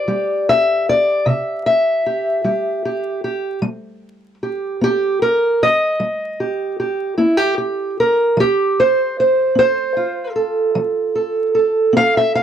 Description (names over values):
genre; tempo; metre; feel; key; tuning
acoustic country blues, solo or duo; 51 BPM (dotted quarters); 12/8; straight; unclear; A4 = 440 Hz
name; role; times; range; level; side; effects
fingerpicked steel-string acoustic guitar; solo; 0.0-12.4 s; C3 to F5; -15 LUFS; right 1 dB; none
room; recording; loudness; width
little or no reverb; dry, close 1970s-style studio recording, vinyl crackle; -15 LUFS; side -9 dB against mid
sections
0.0-12.4 A section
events
steel-string acoustic guitar solo 0.0-12.4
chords
0.0 C; 3.6 G; 8.4 F